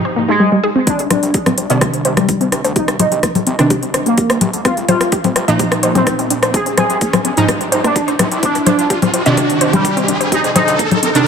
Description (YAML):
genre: melodic techno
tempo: 127 BPM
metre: 4/4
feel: straight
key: C minor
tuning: A4 = 440 Hz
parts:
  - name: wide unison pluck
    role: arpeggios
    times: 0.0-11.1 s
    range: G3 to Eb5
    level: -19 LUFS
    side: equal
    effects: sidechain pumping, dub echo
  - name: synth brass stab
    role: stabs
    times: 0.0-11.3 s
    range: Ab2 to Eb4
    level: -18 LUFS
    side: right 2 dB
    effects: chorus, cassette tape, sidechain pumping, dub echo
  - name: resonant sweep polysynth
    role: melody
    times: 0.3-10.8 s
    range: G3 to Ab4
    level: -18 LUFS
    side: equal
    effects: chorus, sidechain pumping, analog delay
  - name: deep house drum kit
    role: drums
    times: 0.9-11.2 s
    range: congas, hi-hat, rim click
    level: -17 LUFS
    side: left 3 dB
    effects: sidechain pumping on hats, studio reverb, sidechain pumping on perc, dub echo
  - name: electronic kick drum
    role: drums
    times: 0.9-10.9 s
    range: none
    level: -20 LUFS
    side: equal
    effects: high-pass filter on kick, studio reverb
  - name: riser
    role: sound effects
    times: 3.3-11.3 s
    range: none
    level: -23 LUFS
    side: equal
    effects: none
  - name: gritty driven synth bass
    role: bass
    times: 1.0-11.2 s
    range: C2 to D2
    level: -26 LUFS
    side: equal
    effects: sidechain pumping, high-pass filter
room: moderate echo chamber reverb, RT60 1.8 s, digital ambience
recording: echo-heavy mix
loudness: -12 LUFS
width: side -6 dB against mid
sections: 0.9-11.3 A section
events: build-up 0.9-11.3; filter sweep on synth arpeggio sound 0.9-11.3; filter sweep on analog polysynth 0.9-11.3; riser 3.3-11.3; drum fill 8.4-11.3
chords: 0.0 Fm7 (rootless); 0.9 Cmadd9; 4.7 Ebsus2/C; 6.5 N.C.; 8.4 Cmadd9